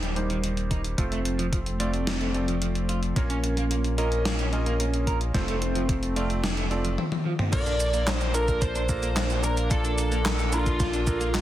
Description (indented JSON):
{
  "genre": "synthwave",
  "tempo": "110 BPM",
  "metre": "4/4",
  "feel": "straight",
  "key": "F mixolydian",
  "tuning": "A4 = 439 Hz",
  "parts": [
    { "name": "chorused pulse-width pad", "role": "sustained chords", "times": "0.0-11.4 s", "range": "F3 to Eb4", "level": "-32 LUFS", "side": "equal", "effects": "sidechain pumping" },
    { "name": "electric guitar at the edge of break-up", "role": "riff", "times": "0.0-11.4 s", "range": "Eb3 to Bb4", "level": "-35 LUFS", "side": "right 3 dB", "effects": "wide subtle chorus, low-pass filter, digital delay" },
    { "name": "bright electric grand piano", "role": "stabs", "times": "0.0-11.4 s", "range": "G3 to Eb5", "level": "-33 LUFS", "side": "right 2 dB", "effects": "low-pass filter, digital delay" },
    { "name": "round analog bass", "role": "bass", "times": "0.0-11.4 s", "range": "Eb1 to Bb1", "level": "-28 LUFS", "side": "equal", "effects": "tube saturation" },
    { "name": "gated 80s digital drum machine", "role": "drums", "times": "0.0-11.4 s", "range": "crash cymbal, handclaps, hi-hat, shaker, snare drum, toms", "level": "-30 LUFS", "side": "left 1 dB", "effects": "gated reverb, gated reverb snare, soft clipping on snare" },
    { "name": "electronic kick drum", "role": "drums", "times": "0.7-11.2 s", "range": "none", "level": "-28 LUFS", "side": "equal", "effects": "none" },
    { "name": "biting lead guitar", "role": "melody", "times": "7.5-11.4 s", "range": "F4 to D5", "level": "-29 LUFS", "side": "equal", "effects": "overdrive, tape echo" }
  ],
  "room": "moderate recital hall reverb, RT60 1.4 s",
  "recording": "dense, heavily limited modern master",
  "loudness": "-23 LUFS",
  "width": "side -13 dB against mid",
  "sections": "0.0-7.5 A section; 7.5-11.4 B section",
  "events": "filter sweep on analog synth pad 0.0-7.5; drum fill 7.0-7.5",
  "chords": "0.0 Eb; 1.0 F; 3.2 Bbm; 5.3 F; 7.5 Bbmaj7",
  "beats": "0.44 | 0.98 1.53 2.07 2.62 | 3.16 3.71 4.25 4.80 | 5.34 5.89 6.44 6.98 | 7.53 8.07 8.62 9.16 | 9.71 10.25 10.80 11.35"
}